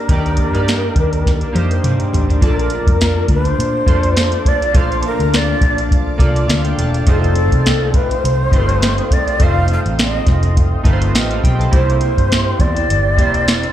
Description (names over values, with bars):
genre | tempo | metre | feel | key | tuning
indie pop, bedroom pop | 103 BPM | 4/4 | swing 55% on 16ths | Bb major | A4 = 438 Hz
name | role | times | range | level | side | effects
breathy reedy shakuhachi | melody | 0.0-13.7 s | A4 to F5 | -20 LUFS | left 1 dB | wide subtle chorus, slapback echo
chorused retro synth keys | accompaniment | 0.0-13.7 s | G3 to A5 | -24 LUFS | right 4 dB | cassette tape, slapback echo
electric guitar through a small old amp | accompaniment | 0.0-13.7 s | F2 to E4 | -25 LUFS | left 3 dB | wide subtle chorus, warbly pitch drift, slapback echo
vintage muted fingered electric bass | bass | 0.1-13.6 s | E1 to Bb2 | -18 LUFS | equal | none
soft vintage rhythm box | drums | 0.1-13.7 s | hi-hat, kick drum, snare drum, toms | -16 LUFS | equal | none
ethereal airy pad | sustained chords | 3.3-13.7 s | Bb3 to E6 | -30 LUFS | equal | ensemble chorus, built-in reverb, phaser
room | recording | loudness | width
light reverb, digital ambience | live gig heard through the venue's PA, club reverb | -12 LUFS | side -12 dB against mid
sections
0.0-2.4 A section; 2.4-13.7 B section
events
drum fill 1.3-2.4; synth keys fill 5.9-7.1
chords
0.0 Ebmaj7; 2.4 Bbmaj7; 7.1 F7; 11.7 C7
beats
| 0.09 0.67 1.25 1.83 | 2.42 3.00 3.58 4.16 | 4.74 5.33 5.91 6.49 | 7.07 7.65 8.23 8.82 | 9.40 9.98 10.56 11.14 | 11.73 12.31 12.89 13.47